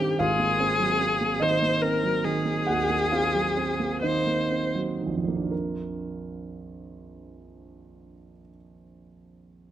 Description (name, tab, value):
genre	classical, impressionist duo for viola and grand piano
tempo	38-50 BPM (dotted quarters)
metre	12/8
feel	rubato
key	unclear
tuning	A4 = 441 Hz
part	rich viola	melody	0.0-4.7 s	G4 to C5	-25 LUFS	left 2 dB	none
part	warm grand piano	accompaniment	0.0-9.7 s	Ab1 to G5	-27 LUFS	right 3 dB	none
room	moderate recital hall reverb, RT60 1.7 s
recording	close, detailed microphones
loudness	-23 LUFS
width	side -11 dB against mid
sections	0.0-5.5 A section; 5.5-9.7 B section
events	slowing down 0.0-5.5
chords	0.2 Ab9; 5.5 Bb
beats	| 0.19 1.41 2.67 4.02 | 5.51 6.92 8.35